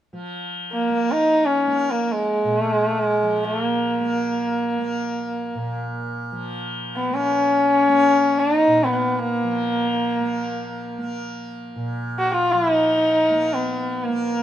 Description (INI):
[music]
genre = indian classical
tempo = free time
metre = none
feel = none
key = Bb raga bhairavi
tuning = A4 = 445 Hz
[part]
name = tanpura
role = drone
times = 0.1-14.4 s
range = Bb2 to Bb3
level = -29 LUFS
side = right 1 dB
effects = none
[part]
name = warm sarangi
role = melody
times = 0.7-14.4 s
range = Ab3 to Gb4+25c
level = -18 LUFS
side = equal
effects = none
[sound]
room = light reverb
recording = minimal, uncompressed stereo recording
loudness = -19 LUFS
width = side -11 dB against mid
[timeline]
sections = 0.1-14.4 A section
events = none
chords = none